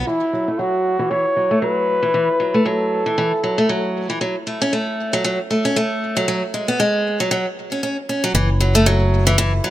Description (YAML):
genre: folktronica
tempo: 116 BPM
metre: 4/4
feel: swing 56% on 16ths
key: F# minor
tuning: A4 = 441 Hz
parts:
  - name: picked steel-string acoustic guitar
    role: arpeggios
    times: 0.0-9.7 s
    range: E3 to C#4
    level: -19 LUFS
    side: equal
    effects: low-pass filter, tape echo
  - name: modern bright fingered electric bass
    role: bass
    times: 0.0, 8.3-9.6 s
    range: F#1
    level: -16 LUFS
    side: equal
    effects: none
  - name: breathy flugelhorn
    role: melody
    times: 0.1-3.9 s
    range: E4 to C#5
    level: -19 LUFS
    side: equal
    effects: tape echo
room: light reverb, small room ambience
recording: none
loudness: -16 LUFS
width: side -13 dB against mid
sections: 0.1-8.3 A section; 8.3-9.7 B section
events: filter sweep on steel-string acoustic guitar 0.1-8.3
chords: 0.1 F#m7; 4.2 F#m; 6.3 C#sus4; 8.3 F#7(no3)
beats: | 0.07 0.59 1.11 1.62 | 2.14 2.66 3.17 3.69 | 4.21 4.73 5.24 5.76 | 6.28 6.79 7.31 7.83 | 8.35 8.86 9.38